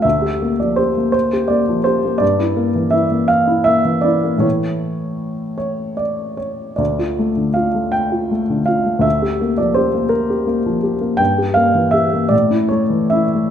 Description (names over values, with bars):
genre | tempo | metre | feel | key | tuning
classical, romantic character piece for solo piano | 46-58 BPM (dotted quarters) | 6/8 | rubato | unclear | A4 = 440 Hz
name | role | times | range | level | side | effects
clear baby grand piano | solo | 0.0-13.5 s | D2 to G5 | -15 LUFS | equal | none
room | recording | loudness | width
wet recital hall reverb, RT60 1.3 s | none | -15 LUFS | side -9 dB against mid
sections
0.0-13.5 A section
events
none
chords
0.0 Gm7/D; 2.2 Edim/G; 4.4 A; 6.8 Dm; 9.0 Gm7/D; 11.2 Edim/G; 12.3 A5